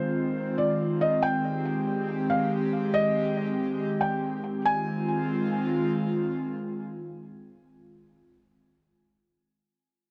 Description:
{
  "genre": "hip hop",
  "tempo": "140 BPM",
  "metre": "4/4",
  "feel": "half-time",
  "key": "F minor",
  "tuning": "A4 = 440 Hz",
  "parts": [
    { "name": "felt-muted upright piano", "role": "melody", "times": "0.0-5.9 s", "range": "C5 to Ab5", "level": "-31 LUFS", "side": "equal", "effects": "tape echo" },
    { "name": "airy breathy pad", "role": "sustained chords", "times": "0.0-7.8 s", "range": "Eb3 to G4", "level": "-30 LUFS", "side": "equal", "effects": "chorus" }
  ],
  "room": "wet small room ambience, RT60 0.5 s",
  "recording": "dry, gritty hardware recording, cassette tape",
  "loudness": "-27 LUFS",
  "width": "mono",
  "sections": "0.0-4.7 A section; 4.7-8.1 B section",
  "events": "none",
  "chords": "0.0 Fm7; 1.2 Abmaj7; 4.7 Fm7",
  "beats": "0.37 0.80 | 1.23 1.65 2.08 2.51 | 2.94 3.37 3.80 4.22 | 4.65 5.08 5.51 5.94 | 6.37 6.80 7.22 7.65"
}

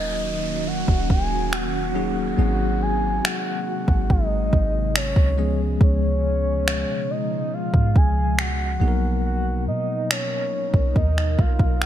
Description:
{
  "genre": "contemporary R&B",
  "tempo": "70 BPM",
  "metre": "4/4",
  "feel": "straight",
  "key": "unclear",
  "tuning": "A4 = 440 Hz",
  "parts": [
    { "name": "soft octave-layered synth lead", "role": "melody", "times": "0.0-11.9 s", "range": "Db5 to Ab5", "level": "-27 LUFS", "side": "equal", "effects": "chorus, tremolo, ping-pong delay" },
    { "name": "bell-like tine electric piano", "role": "accompaniment", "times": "0.0-11.9 s", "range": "F3 to Bb4", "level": "-29 LUFS", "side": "left 3 dB", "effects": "medium stereo tremolo" },
    { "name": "ethereal airy pad", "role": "sustained chords", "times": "0.0-11.9 s", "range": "Cb3 to A#4", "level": "-30 LUFS", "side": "right 1 dB", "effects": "ensemble chorus, built-in reverb" },
    { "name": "clean 808-style bass", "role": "bass", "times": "0.0-11.9 s", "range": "Eb1 to B2", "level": "-23 LUFS", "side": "equal", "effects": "none" },
    { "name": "downlifter", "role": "sound effects", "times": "0.0-5.8 s", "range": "none", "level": "-36 LUFS", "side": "right 1 dB", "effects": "none" },
    { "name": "smooth R&B drum kit", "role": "drums", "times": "0.9-11.9 s", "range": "finger snaps, kick drum", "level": "-22 LUFS", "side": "equal", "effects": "overdrive, gated reverb" }
  ],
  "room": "little or no reverb",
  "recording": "bright 1980s-style digital production",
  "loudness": "-19 LUFS",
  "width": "side -11 dB against mid",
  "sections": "0.0-11.9 A section",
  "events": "break 0.0-11.9",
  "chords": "0.0 Ebm7; 2.4 Ab9; 5.4 Db7; 8.8 Bmaj7",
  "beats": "0.67 1.52 | 2.38 3.24 4.09 4.95 | 5.81 6.67 7.52 8.38 | 9.24 10.10 10.95 11.81"
}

